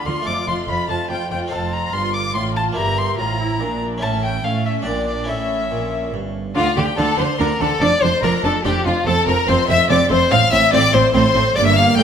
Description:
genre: classical, baroque-style concerto movement with solo episodes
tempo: 144 BPM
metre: 3/4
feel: straight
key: D minor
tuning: A4 = 440 Hz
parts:
  - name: rich chamber violin section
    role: melody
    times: 0.0-12.0 s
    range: A4 to G6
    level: -25 LUFS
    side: left 4 dB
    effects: none
  - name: warm violin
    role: melody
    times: 0.0-12.0 s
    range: F4 to D6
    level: -20 LUFS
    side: left 2 dB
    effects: none
  - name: warm studio violin section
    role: second line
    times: 0.0-12.0 s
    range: F4 to D6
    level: -23 LUFS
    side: left 4 dB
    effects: none
  - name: harpsichord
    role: accompaniment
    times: 0.0-12.0 s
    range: F2 to E5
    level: -27 LUFS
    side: equal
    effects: none
  - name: rich studio viola section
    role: accompaniment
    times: 0.0-12.0 s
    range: A3 to G4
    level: -24 LUFS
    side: right 2 dB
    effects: none
  - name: rich chamber double bass section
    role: bass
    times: 0.1-12.0 s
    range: F1 to A2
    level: -24 LUFS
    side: right 4 dB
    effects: none
  - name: warm chamber cello section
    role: bass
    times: 0.1-12.0 s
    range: F2 to A3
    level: -24 LUFS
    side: right 3 dB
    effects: none
room: moderate recital hall reverb, RT60 1.4 s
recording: none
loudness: -15 LUFS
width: side -8 dB against mid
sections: 0.0-6.6 A section; 6.6-12.0 B section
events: none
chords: 0.3 Fadd9; 1.5 F; 2.8 Edim/G; 4.0 A; 4.9 Gm/Bb; 5.3 A; 6.6 Dm; 7.8 Dm/F; 9.1 F; 10.3 F/A

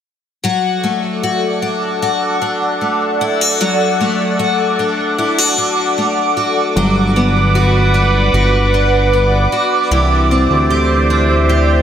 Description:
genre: dream pop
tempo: 76 BPM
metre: 4/4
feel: straight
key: D mixolydian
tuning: A4 = 440 Hz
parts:
  - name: phased analog pad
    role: sustained chords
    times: 1.2-11.8 s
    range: A4 to D6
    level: -16 LUFS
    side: right 2 dB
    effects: phaser, chorus
  - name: picked twelve-string acoustic guitar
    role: arpeggios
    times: 0.4-11.8 s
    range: E3 to G4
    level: -16 LUFS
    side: left 3 dB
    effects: wide subtle chorus, tape echo
  - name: fat analog bass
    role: bass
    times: 6.8-11.8 s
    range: G1 to D2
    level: -14 LUFS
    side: equal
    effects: none
room: moderate huge ambient reverb, RT60 4.8 s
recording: none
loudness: -12 LUFS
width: side -9 dB against mid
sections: 0.4-11.8 A section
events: none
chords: 0.4 D; 6.8 Gmaj7; 9.9 Cadd9

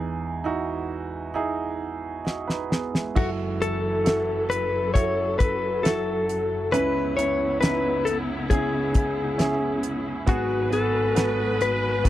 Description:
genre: pop ballad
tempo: 67 BPM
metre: 4/4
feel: straight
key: unclear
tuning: A4 = 441 Hz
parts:
  - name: clear grand piano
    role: accompaniment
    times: 0.0-12.1 s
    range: F#1 to D#5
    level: -27 LUFS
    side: right 4 dB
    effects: none
  - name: damped 70s drum kit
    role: drums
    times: 2.3-12.1 s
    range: crash cymbal, hi-hat, kick drum, snare drum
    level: -22 LUFS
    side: left 1 dB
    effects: none
  - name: direct-recorded clean electric guitar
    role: melody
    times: 3.2-12.1 s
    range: F#4 to C#5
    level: -25 LUFS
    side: left 4 dB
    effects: none
  - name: warm studio string section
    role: sustained chords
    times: 3.2-12.1 s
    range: F#2 to B4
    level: -30 LUFS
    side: left 2 dB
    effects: none
room: little or no reverb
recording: dry, close 1970s-style studio recording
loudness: -22 LUFS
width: side -13 dB against mid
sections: 0.0-3.2 A section; 3.2-12.1 B section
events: drum fill 2.3-3.2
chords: 0.0 Emaj7; 3.2 F#m7; 6.7 C#m7; 10.3 G#m7

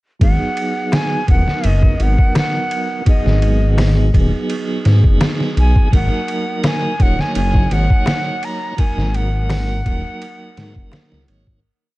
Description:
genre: trip hop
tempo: 84 BPM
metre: 4/4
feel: straight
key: G# minor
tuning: A4 = 439 Hz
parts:
  - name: bright reedy jazz flute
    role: melody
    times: 0.2-11.3 s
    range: D#5 to A#5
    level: -24 LUFS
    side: equal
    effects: tape echo
  - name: tonewheel organ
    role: accompaniment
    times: 0.2-11.6 s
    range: F#3 to C#5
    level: -23 LUFS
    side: right 2 dB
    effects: stopped rotary speaker, tremolo, low-pass filter, tape echo
  - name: dark detuned saw bass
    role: bass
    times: 0.2-11.6 s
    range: D#1 to G#2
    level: -15 LUFS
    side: equal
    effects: none
  - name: trip hop sampler-style drum kit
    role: drums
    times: 0.2-11.6 s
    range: hi-hat, kick drum, ride cymbal, snare drum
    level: -17 LUFS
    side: equal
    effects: none
  - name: darbuka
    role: percussion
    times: 0.9-11.1 s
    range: none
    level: -30 LUFS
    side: left 3 dB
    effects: none
room: digital ambience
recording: dark, warm production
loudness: -14 LUFS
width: side -19 dB against mid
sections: 0.2-11.6 groove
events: filter sweep on tonewheel organ 0.2-11.6; fade-out 7.8-11.6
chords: 0.2 G#m7; 5.9 D#m

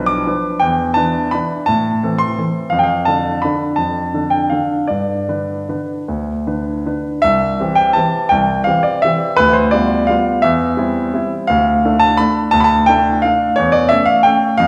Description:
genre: classical, piano waltz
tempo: 148-186 BPM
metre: 3/4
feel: rubato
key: C major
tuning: A4 = 444 Hz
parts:
  - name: warm grand piano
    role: solo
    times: 0.0-14.7 s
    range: B1 to D6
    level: -16 LUFS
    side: equal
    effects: none
room: wet recital hall reverb, RT60 1.6 s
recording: heard from further back in the room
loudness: -16 LUFS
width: mono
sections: 0.0-7.2 A section; 7.2-14.7 B section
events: none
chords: 0.0 Bdim; 0.6 Em7; 1.7 Am; 2.7 Dm/F; 4.9 G; 7.2 C; 9.4 G7/D; 10.4 C/E; 11.5 Dm; 13.6 A7/E

